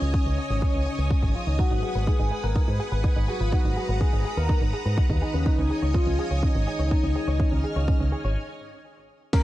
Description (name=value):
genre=italo disco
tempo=124 BPM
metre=4/4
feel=straight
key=unclear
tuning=A4 = 440 Hz
part: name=soft octave-layered synth lead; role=melody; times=0.0-9.4 s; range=Db4 to Bb4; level=-30 LUFS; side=left 1 dB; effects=chorus, digital delay
part: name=string machine, full ensemble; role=sustained chords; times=0.0-9.4 s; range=Ab4 to F6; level=-34 LUFS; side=equal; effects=ensemble chorus
part: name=fingered electric bass with an envelope filter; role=bass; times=0.0-8.4 s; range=Ab1 to Ab2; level=-26 LUFS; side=equal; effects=none
part: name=gated 80s digital drum machine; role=drums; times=0.0-9.4 s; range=crash cymbal, hi-hat, tambourine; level=-46 LUFS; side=equal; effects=none
part: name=electronic kick drum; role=drums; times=0.1-9.4 s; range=none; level=-23 LUFS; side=equal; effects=none
part: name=soft round pluck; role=arpeggios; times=1.6-9.4 s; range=Db4 to Db5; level=-34 LUFS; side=right 2 dB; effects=chorus, tape echo
part: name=impact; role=sound effects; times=9.3-9.4 s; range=none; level=-33 LUFS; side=equal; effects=none
room=digital ambience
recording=dark, warm production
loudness=-22 LUFS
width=side -15 dB against mid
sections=0.0-9.3 A section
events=break 8.4-9.3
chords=0.0 Dbsus2; 1.6 Abm7; 5.5 Dbsus2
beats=0.14 0.62 1.11 | 1.59 2.07 2.56 3.04 | 3.52 4.01 4.49 4.98 | 5.46 5.94 6.43 6.91 | 7.40 7.88 8.36 8.85 | 9.33